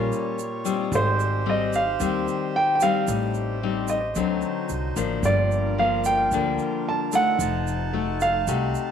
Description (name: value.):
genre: bossa nova.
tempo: 111 BPM.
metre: 4/4.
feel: straight.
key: unclear.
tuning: A4 = 436 Hz.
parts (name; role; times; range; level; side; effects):
clear baby grand piano; melody; 0.0-8.9 s; Bb4 to A5; -24 LUFS; right 2 dB; slapback echo.
nylon-string guitar; accompaniment; 0.0-8.9 s; G2 to Gb4; -26 LUFS; left 9 dB; none.
accordion; sustained chords; 0.0-8.9 s; F#3 to A5; -32 LUFS; right 4 dB; none.
upright bass; bass; 0.0-8.7 s; F1 to Eb2; -28 LUFS; right 1 dB; none.
egg shaker; percussion; 0.1-8.9 s; none; -37 LUFS; right 16 dB; none.
room: wet spring reverb, RT60 1.4 s.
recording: 1960s-style stereo with parts hard left and right.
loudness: -21 LUFS.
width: side -8 dB against mid.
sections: 0.0-8.9 A section.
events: none.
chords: 0.0 Eb9; 0.9 Abmaj7; 3.1 Am7b5; 4.2 D7b9; 5.2 Gm7; 7.4 F7b9.